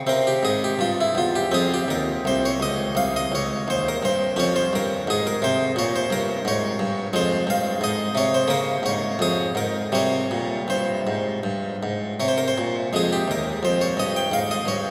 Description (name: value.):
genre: classical, baroque-style suite movement for harpsichord.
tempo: 78-89 BPM.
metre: 4/4.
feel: rubato.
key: F minor.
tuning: A4 = 443 Hz.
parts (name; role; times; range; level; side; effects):
harpsichord; solo; 0.0-14.9 s; C2 to G5; -23 LUFS; equal; none.
room: wet cathedral reverb, RT60 7.0 s.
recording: none.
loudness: -23 LUFS.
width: mono.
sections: 0.0-12.9 A section; 12.9-14.9 A section.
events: none.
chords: 0.1 C; 1.5 F5; 4.3 Bbm/F; 7.1 Fm; 8.5 Bbm; 9.9 C5; 12.9 Fm.